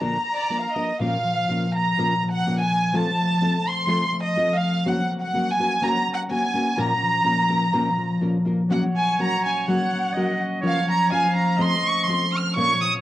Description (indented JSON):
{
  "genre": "mexican folk, mariachi",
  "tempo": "124 BPM",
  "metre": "2/4",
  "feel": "straight",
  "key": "Bb minor",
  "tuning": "A4 = 442 Hz",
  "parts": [
    { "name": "dark chamber violin section", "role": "melody", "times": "0.0-12.9 s", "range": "D5 to F6", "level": "-22 LUFS", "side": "right 1 dB", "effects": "cassette tape" },
    { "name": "nylon-string guitar", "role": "accompaniment", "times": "0.0-12.7 s", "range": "Bb2 to Bb4", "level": "-27 LUFS", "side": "left 1 dB", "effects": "cassette tape" },
    { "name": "concert harp", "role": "arpeggios", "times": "1.0-13.0 s", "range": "Bb2 to Db4", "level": "-24 LUFS", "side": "left 1 dB", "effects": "cassette tape" },
    { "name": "clear trumpet", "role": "second line", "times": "8.7-13.0 s", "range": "Db5 to F5", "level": "-30 LUFS", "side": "right 2 dB", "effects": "cassette tape" }
  ],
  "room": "wet spring reverb, RT60 1.2 s",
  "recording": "home recording on cassette",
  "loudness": "-20 LUFS",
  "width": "side -14 dB against mid",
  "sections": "0.0-1.0 A section; 1.0-13.0 B section",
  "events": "none",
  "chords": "0.0 Bb; 1.0 Bbm; 2.9 F; 4.9 Gb; 6.8 Bbm; 8.7 Gb; 10.6 Bbm/F; 11.6 F"
}